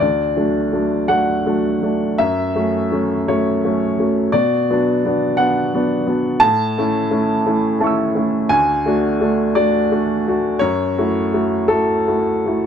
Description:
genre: neoclassical minimalist piano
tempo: 56 BPM (dotted quarters)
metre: 6/8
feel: rubato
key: unclear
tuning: A4 = 441 Hz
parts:
  - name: warm upright piano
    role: solo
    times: 0.0-12.7 s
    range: D2 to E6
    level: -15 LUFS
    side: equal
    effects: none
room: light reverb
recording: dark, warm production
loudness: -15 LUFS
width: side -8 dB against mid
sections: 0.0-12.7 A section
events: none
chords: 0.0 D; 2.2 F#m7; 4.3 Bm; 6.4 A; 8.5 D; 10.6 F#m7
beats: | 0.01 1.09 | 2.18 3.26 | 4.33 5.39 | 6.42 7.47 | 8.52 9.57 | 10.63 11.71

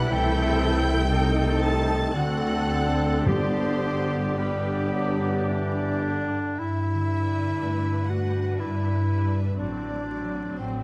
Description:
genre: classical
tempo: 53-62 BPM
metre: 3/4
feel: rubato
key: G major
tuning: A4 = 440 Hz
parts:
  - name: rich studio violin section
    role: melody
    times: 0.0-10.8 s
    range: D5 to A6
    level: -40 LUFS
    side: equal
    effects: none
  - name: clear clarinet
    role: second line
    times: 0.0-10.8 s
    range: B3 to F#4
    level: -33 LUFS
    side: equal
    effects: none
  - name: clear oboe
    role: second line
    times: 0.0-6.2 s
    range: G4 to A4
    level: -40 LUFS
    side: equal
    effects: none
  - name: hollow flute section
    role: second line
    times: 0.0-6.0 s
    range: B4 to A5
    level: -40 LUFS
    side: equal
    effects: none
  - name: rich studio violin section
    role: second line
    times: 0.0-10.8 s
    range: B4 to A5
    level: -39 LUFS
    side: equal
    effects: none
  - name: warm bassoon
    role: accompaniment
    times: 0.0-6.6 s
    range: D3 to G3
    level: -36 LUFS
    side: equal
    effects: none
  - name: warm studio viola section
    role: accompaniment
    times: 0.0-10.8 s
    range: C4 to B4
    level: -37 LUFS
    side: equal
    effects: none
  - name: warm French horn section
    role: sustained chords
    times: 0.0-6.2 s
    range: B3 to E4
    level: -35 LUFS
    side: equal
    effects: none
  - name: concert harp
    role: arpeggios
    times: 0.0-10.8 s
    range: G2 to D5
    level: -37 LUFS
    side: equal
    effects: none
  - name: warm trumpet section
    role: stabs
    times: 0.0-6.2 s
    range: A4 to D5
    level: -38 LUFS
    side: equal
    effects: none
  - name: rich studio cello section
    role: bass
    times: 0.0-10.8 s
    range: F#3 to A4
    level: -38 LUFS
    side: equal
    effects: none
  - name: warm trombone section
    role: sustained chords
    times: 0.1-6.2 s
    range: C3 to A3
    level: -35 LUFS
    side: equal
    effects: none
  - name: rich studio double bass section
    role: bass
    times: 0.1-10.8 s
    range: A1 to G2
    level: -30 LUFS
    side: equal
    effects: none
  - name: warm tuba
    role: bass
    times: 0.1-6.4 s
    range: G1 to D2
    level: -34 LUFS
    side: equal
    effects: none
  - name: timpani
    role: percussion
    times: 3.3-4.9 s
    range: G2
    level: -32 LUFS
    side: equal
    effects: none
room: moderate recital hall reverb, RT60 1.4 s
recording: vinyl crackle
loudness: -25 LUFS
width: mono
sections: 0.0-6.6 A section; 6.6-10.8 B section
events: none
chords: 0.1 Am7/C; 1.1 Am7b5/C; 2.2 D7; 3.3 G; 9.6 D7/A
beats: | 0.11 1.11 2.15 | 3.26 4.37 5.48 | 6.57 7.58 8.60 | 9.59 10.58

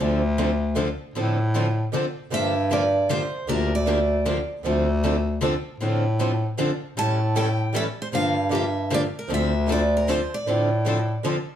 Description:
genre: acoustic string swing (jazz manouche)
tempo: 155 BPM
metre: 3/4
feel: swing 64% on 8ths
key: D minor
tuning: A4 = 439 Hz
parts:
  - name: picked steel-string acoustic guitar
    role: accompaniment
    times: 0.0-11.4 s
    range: D3 to A4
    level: -28 LUFS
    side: left 4 dB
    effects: none
  - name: picked swing-style acoustic guitar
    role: accompaniment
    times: 0.0-11.4 s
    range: D3 to A4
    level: -30 LUFS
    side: right 5 dB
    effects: none
  - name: breathy bass clarinet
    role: bass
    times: 0.0-11.2 s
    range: D2 to A2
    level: -24 LUFS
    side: equal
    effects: none
  - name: picked steel-string acoustic guitar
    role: melody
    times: 2.3-4.5, 7.0-11.2 s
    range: Bb4 to A5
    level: -26 LUFS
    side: right 2 dB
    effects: none
room: moderate studio reverb, RT60 0.9 s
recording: heard from further back in the room, faint mains hum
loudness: -21 LUFS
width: side -10 dB against mid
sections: 0.0-11.6 A section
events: none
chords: 0.0 Dm7; 2.3 Gm7; 4.6 Dm7; 7.0 A7; 8.1 Gm7; 9.3 Dm7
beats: 0.37 0.76 | 1.15 1.54 1.93 | 2.31 2.70 3.09 | 3.48 3.87 4.25 | 4.64 5.03 5.42 | 5.80 6.19 6.58 | 6.97 7.36 7.75 | 8.13 8.52 8.91 | 9.30 9.69 10.07 | 10.46 10.85 11.24

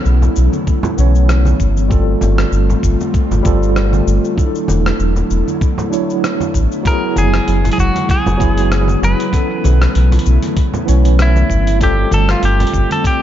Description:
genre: sunset chillout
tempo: 97 BPM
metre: 4/4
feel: swing 55% on 16ths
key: unclear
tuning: A4 = 443 Hz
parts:
  - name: tine electric piano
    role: accompaniment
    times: 0.0-13.2 s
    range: E3 to C#5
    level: -20 LUFS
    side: moving between left 5 dB and right 4 dB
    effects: medium stereo tremolo, auto-pan, tape echo, shimmer reverb
  - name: airy breathy pad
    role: sustained chords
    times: 0.0-13.2 s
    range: C#3 to F4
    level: -22 LUFS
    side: right 1 dB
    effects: chorus, shimmer reverb
  - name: round analog bass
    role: bass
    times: 0.1-12.9 s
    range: E1 to B1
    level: -13 LUFS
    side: equal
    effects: none
  - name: dusty soul sampler-style drum kit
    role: drums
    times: 0.1-13.2 s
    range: cabasa, hi-hat, rim click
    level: -25 LUFS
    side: left 1 dB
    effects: none
  - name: congas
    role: percussion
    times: 0.2-13.0 s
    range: none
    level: -25 LUFS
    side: right 1 dB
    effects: none
  - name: electronic kick drum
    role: drums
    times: 0.7-13.2 s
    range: none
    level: -16 LUFS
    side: equal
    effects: none
  - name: clean electric guitar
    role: melody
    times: 6.9-13.2 s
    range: E4 to B4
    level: -20 LUFS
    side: equal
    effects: tape echo, shimmer reverb
room: light reverb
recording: dark, warm production, nothing above 7.6 kHz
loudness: -12 LUFS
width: side -11 dB against mid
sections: 0.0-13.2 A section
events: none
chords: 0.0 B9sus4; 1.9 G9sus4; 4.4 E9sus4; 6.9 F#9sus4; 9.3 B9sus4; 11.8 G9sus4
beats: 0.05 0.67 1.29 | 1.91 2.53 3.15 3.76 | 4.38 5.00 5.62 6.24 | 6.86 7.48 8.09 8.71 | 9.33 9.95 10.57 11.19 | 11.81 12.42 13.04

